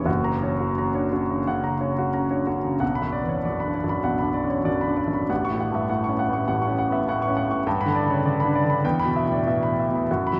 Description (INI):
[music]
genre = classical, romantic character piece for solo piano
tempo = 83-103 BPM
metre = 4/4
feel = rubato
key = B minor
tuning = A4 = 441 Hz
[part]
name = clear grand piano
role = solo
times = 0.0-10.4 s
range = F#1 to C#6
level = -24 LUFS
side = equal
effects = none
[sound]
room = wet cathedral reverb, RT60 5.4 s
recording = recorded in a church or concert hall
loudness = -24 LUFS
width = mono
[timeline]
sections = 0.0-2.8 A section; 2.8-10.4 B section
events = none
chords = 0.1 F#; 2.8 Bm; 5.3 F#m/A; 7.7 G; 8.8 Em